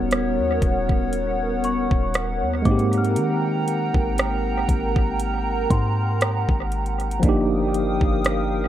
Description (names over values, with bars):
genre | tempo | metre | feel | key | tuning
contemporary R&B | 59 BPM | 4/4 | swing 54% on 16ths | unclear | A4 = 439 Hz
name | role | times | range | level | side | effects
tine electric piano | accompaniment | 0.0-8.7 s | F3 to G4 | -25 LUFS | right 1 dB | fast stereo tremolo, analog delay
hollow soft pad | sustained chords | 0.0-8.7 s | B3 to Eb6 | -25 LUFS | equal | chorus
warm 808-style bass | bass | 0.0-8.7 s | Eb1 to Eb3 | -26 LUFS | equal | none
smooth R&B drum kit | drums | 0.1-8.5 s | hi-hat, kick drum, rim click | -23 LUFS | equal | analog delay
small celesta | texture | 1.6-7.7 s | C6 to F6 | -33 LUFS | left 2 dB | analog delay
room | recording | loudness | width
digital ambience | echo-heavy mix | -19 LUFS | side -11 dB against mid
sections
0.0-8.7 A section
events
none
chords
0.0 Eb7alt; 2.7 Abmaj9; 7.2 Ebmaj9/G